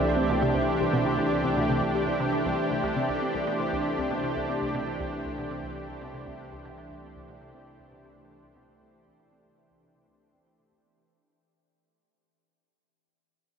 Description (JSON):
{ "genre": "ambient, sequencer-driven space music", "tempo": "118 BPM", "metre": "4/4", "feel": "straight", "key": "C major", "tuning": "A4 = 440 Hz", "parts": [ { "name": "lush unison pad", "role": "sustained chords", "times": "0.0-11.1 s", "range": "E3 to C5", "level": "-27 LUFS", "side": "equal", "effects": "chorus" }, { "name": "fat analog bass", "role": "bass", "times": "0.0-11.1 s", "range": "C2", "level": "-40 LUFS", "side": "equal", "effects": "none" }, { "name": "pulsing gated texture", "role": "texture", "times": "0.0-11.1 s", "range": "E5", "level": "-38 LUFS", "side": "right 5 dB", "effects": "chorus, built-in reverb" }, { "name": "thumb-piano-like synth pluck", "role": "arpeggios", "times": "0.2-11.0 s", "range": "B3 to C5", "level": "-36 LUFS", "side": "left 2 dB", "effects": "none" }, { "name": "resonant blip pluck", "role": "riff", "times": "0.2-11.0 s", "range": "C2 to E3", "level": "-33 LUFS", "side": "left 1 dB", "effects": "phaser, ping-pong delay" } ], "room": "wet huge ambient reverb, RT60 7.2 s", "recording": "none", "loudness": "-25 LUFS", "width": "side -7 dB against mid", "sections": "0.0-11.1 A section", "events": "fade-out on synth arpeggio sound 0.0-11.1; fade-out on analog synth bass 0.0-11.1; fade-out 0.0-11.1", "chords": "0.0 C" }